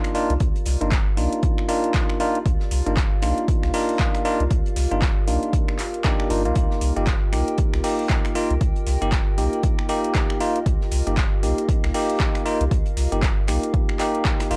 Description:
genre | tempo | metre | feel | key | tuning
deep house | 117 BPM | 4/4 | swing 59% on 16ths | unclear | A4 = 440 Hz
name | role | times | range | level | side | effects
warbly tape-like pad | sustained chords | 0.4-14.6 s | F4 to G5 | -34 LUFS | equal | chorus, built-in reverb, vintage 12-bit sampler grit, sidechain pumping
bell-like tine electric piano | stabs | 0.0-14.6 s | Bb3 to G4 | -27 LUFS | equal | sidechain pumping, analog delay
deep house drum kit | drums | 0.0-14.6 s | finger snaps, handclaps, hi-hat | -33 LUFS | equal | overdrive
warm soul drum kit | drums | 0.0-14.5 s | hi-hat, snare drum | -42 LUFS | equal | none
warm sub bass | bass | 0.3-14.6 s | G1 to C2 | -26 LUFS | equal | sidechain pumping
electronic kick drum | drums | 0.4-14.4 s | none | -24 LUFS | equal | overdrive
room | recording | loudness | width
little or no reverb | dry, gritty hardware recording, transformer saturation, cassette tape | -22 LUFS | mono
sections
0.0-14.6 A section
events
none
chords
0.0 Cm11; 6.6 Eb

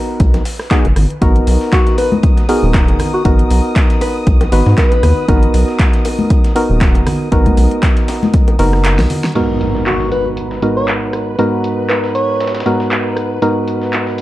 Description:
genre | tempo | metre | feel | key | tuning
deep house | 118 BPM | 4/4 | swing 55% on 16ths | G# minor | A4 = 440 Hz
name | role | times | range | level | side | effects
percussive organ stab | stabs | 0.0-14.2 s | G#2 to B4 | -17 LUFS | equal | chorus, vintage 12-bit sampler grit, sidechain pumping, analog delay
soft string machine | texture | 0.0-14.2 s | B4 to D#6 | -30 LUFS | equal | ensemble chorus, sidechain pumping
rubbery square bass | bass | 0.2-9.1 s | D#1 to G#2 | -13 LUFS | equal | sidechain pumping
deep house drum kit | drums | 0.2-14.0 s | crash cymbal, handclaps, hi-hat, rim click, snare drum | -22 LUFS | equal | overdrive, low-pass filter on hats, studio reverb, low-pass filter on snare, low-pass filter on cymbals
dusty soul sampler-style drum kit | drums | 0.2-14.2 s | hi-hat, snare drum | -33 LUFS | equal | sidechain pumping on hats, high-pass filter on hats, low-pass filter on hats, studio reverb, high-pass filter on snare, low-pass filter on snare, high-pass filter on room, low-pass filter on room
electronic kick drum | drums | 0.2-8.4 s | none | -13 LUFS | equal | overdrive, studio reverb
bongos and congas | percussion | 0.3-9.2 s | none | -20 LUFS | left 2 dB | none
dark alto saxophone | melody | 1.7-5.5, 9.9-12.5 s | F#4 to C#5 | -20 LUFS | equal | analog delay
impact | sound effects | 9.4-11.4 s | none | -23 LUFS | equal | none
room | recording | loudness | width
digital ambience | dark, warm production | -11 LUFS | side -16 dB against mid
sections
0.0-9.4 A section; 9.4-14.2 B section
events
kick drops out 8.8-9.4; drum fill 9.0-9.4; impact 9.4-11.4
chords
0.0 G#m9

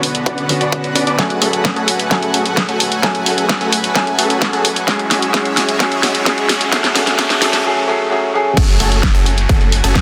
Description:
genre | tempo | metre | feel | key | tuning
EDM, festival progressive house | 130 BPM | 4/4 | straight | F# minor | A4 = 440 Hz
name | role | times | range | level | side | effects
felt-muted upright piano | accompaniment | 0.0-8.6 s | D3 to G#5 | -22 LUFS | equal | sidechain pumping, digital delay
supersaw pad | sustained chords | 0.0-10.0 s | D3 to G#5 | -25 LUFS | equal | sidechain pumping
supersaw stab | riff | 0.0-10.0 s | G#3 to D5 | -22 LUFS | equal | sidechain pumping, low-pass filter, digital delay
pop drum kit | drums | 0.0-10.0 s | crash cymbal, hi-hat, snare drum | -20 LUFS | equal | soft clipping on snare
electronic kick drum | drums | 0.3-10.0 s | none | -17 LUFS | equal | overdrive, high-pass filter on kick
riser and downlifter | sound effects | 3.9-10.0 s | none | -28 LUFS | equal | none
saturated sub bass | bass | 8.6-10.0 s | F#1 | -20 LUFS | equal | sidechain pumping
room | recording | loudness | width
moderate huge ambient reverb, RT60 7.0 s | dense, heavily limited modern master, high-pass filter | -15 LUFS | mono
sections
0.0-8.6 A section; 8.6-10.0 B section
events
build-up 0.0-8.6; filter sweep on supersaw synth 0.0-8.6; drum fill 1.2-7.6; drop 8.6-10.0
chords
0.0 Bmadd9; 1.2 F#madd9; 4.9 C#m; 6.7 Bmadd9; 8.6 F#madd9

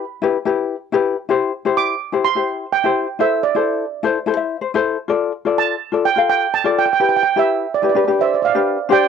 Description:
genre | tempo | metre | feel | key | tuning
calypso | 126 BPM | 4/4 | straight | C major | A4 = 439 Hz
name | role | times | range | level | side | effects
steel pan | melody | 0.0-9.1 s | C5 to D6 | -17 LUFS | right 10 dB | none
ukulele | accompaniment | 0.0-9.1 s | D4 to F5 | -18 LUFS | left 7 dB | cassette tape
room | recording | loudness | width
light reverb | home recording on cassette | -16 LUFS | side -6 dB against mid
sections
0.0-8.9 A section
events
ukulele fill 4.2-5.1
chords
0.0 Em; 1.3 C; 3.2 Am; 5.1 Dm; 7.0 Em; 8.0 G

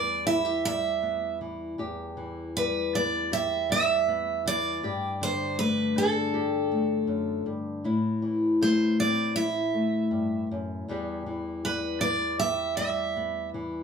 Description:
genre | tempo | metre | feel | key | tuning
folk | 79 BPM | 4/4 | straight | E minor | A4 = 440 Hz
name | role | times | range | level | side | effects
picked steel-string acoustic guitar | melody | 0.0-13.5 s | A4 to E5 | -26 LUFS | right 2 dB | none
nylon-string guitar | accompaniment | 0.0-13.8 s | E2 to G4 | -28 LUFS | left 2 dB | none
room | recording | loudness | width
wet studio ambience, RT60 0.5 s | band playing live in one room | -25 LUFS | side -6 dB against mid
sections
0.0-13.8 A section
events
none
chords
0.0 Em; 4.8 Gsus2; 7.8 Am; 10.9 Em

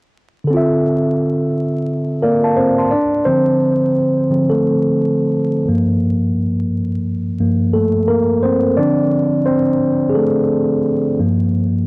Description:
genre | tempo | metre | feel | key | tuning
hip hop | 87 BPM | 4/4 | swing 60% on 16ths | D minor | A4 = 439 Hz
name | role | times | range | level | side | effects
mellow tine electric piano | solo | 0.4-11.9 s | G2 to C6 | -13 LUFS | equal | cassette tape
room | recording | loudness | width
light reverb | home recording on cassette, vinyl crackle | -13 LUFS | side -28 dB against mid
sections
0.5-3.3 A section; 3.3-11.9 B section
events
tine electric piano solo 3.3-11.9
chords
0.5 Dm7; 2.9 N.C.; 3.3 Dm7; 5.7 Gm7; 8.8 Dm7; 11.2 Gm7

